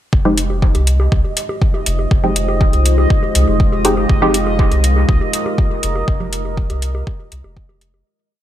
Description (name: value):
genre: dub techno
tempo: 121 BPM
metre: 4/4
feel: straight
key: F minor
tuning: A4 = 441 Hz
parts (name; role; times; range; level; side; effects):
- deep dark ambient pad; sustained chords; 1.5-8.0 s; Ab3 to C5; -22 LUFS; left 1 dB; chorus, built-in reverb, sidechain pumping
- soft dub sub bass; bass; 0.1-8.0 s; F1 to C2; -17 LUFS; equal; sidechain pumping
- electronic kick drum; drums; 0.1-7.7 s; none; -15 LUFS; equal; overdrive
- bubbling stepped-filter texture; texture; 0.4-8.1 s; Eb5; -25 LUFS; right 2 dB; chorus, built-in reverb, sidechain pumping
- filtered dub chord stab; stabs; 0.3-4.4 s; Ab3 to G4; -20 LUFS; equal; chorus, phaser, cassette tape, sidechain pumping, dub echo
- bongos and congas; percussion; 0.3-8.0 s; none; -27 LUFS; right 1 dB; overdrive, sidechain pumping on perc, dub echo
- electronic hi-hat; drums; 0.4-7.9 s; none; -21 LUFS; left 1 dB; overdrive
room: light reverb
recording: bright 1980s-style digital production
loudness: -13 LUFS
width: side -12 dB against mid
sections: 0.1-8.1 groove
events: fade-out 5.4-8.1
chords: 0.1 Fm7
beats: | 0.13 0.62 1.12 1.62 | 2.11 2.61 3.10 3.60 | 4.09 4.59 5.09 5.58 | 6.08 6.58 7.07 7.57